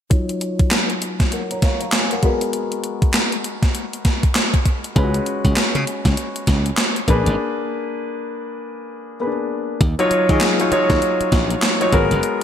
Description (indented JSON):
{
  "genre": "R&B, new jack swing",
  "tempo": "99 BPM",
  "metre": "4/4",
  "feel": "swing 61% on 16ths",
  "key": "Eb minor",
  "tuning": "A4 = 440 Hz",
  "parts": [
    { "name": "warm concert grand piano", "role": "accompaniment", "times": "0.1-12.4 s", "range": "Gb3 to Db6", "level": "-21 LUFS", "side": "left 1 dB", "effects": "low-pass filter" },
    { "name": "gated 80s digital drum machine", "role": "drums", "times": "0.1-12.4 s", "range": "handclaps, hi-hat, kick drum, snare drum", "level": "-18 LUFS", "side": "equal", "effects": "gated reverb, gated reverb snare, overdrive" },
    { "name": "glassy slap bass", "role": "bass", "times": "5.0-12.2 s", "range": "Gb1 to Eb3", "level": "-20 LUFS", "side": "equal", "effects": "none" }
  ],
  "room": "moderate plate reverb, RT60 2.4 s",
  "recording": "bright 1980s-style digital production",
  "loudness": "-16 LUFS",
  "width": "side -9 dB against mid",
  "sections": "0.1-9.8 A section; 9.8-12.4 B section",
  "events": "filter sweep on grand piano 0.1-9.8; break 7.4-9.8",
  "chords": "0.1 Ebm9; 2.2 Abm9; 5.0 Db7sus4; 7.1 Bb7b9; 9.8 Ebm9; 11.9 Abm9",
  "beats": "| 0.11 0.72 1.32 1.93 | 2.53 3.14 3.75 4.35 | 4.96 5.56 6.17 6.78 | 7.38 7.99 8.59 9.20 | 9.81 10.41 11.02 11.62 | 12.23"
}